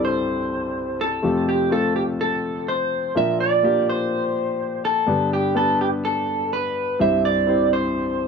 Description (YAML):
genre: pop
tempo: 125 BPM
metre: 4/4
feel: straight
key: C major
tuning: A4 = 439 Hz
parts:
  - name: electric guitar through a small old amp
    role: melody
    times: 0.0-8.3 s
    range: G4 to E5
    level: -21 LUFS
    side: right 2 dB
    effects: wide subtle chorus
  - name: warm grand piano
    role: accompaniment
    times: 0.0-8.3 s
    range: C2 to C5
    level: -23 LUFS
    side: left 3 dB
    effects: none
room: light reverb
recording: dry, close 1970s-style studio recording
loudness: -19 LUFS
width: side -5 dB against mid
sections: 0.0-8.3 A section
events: none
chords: 0.0 C; 1.2 Fadd9; 3.2 Bb; 5.1 G; 7.0 C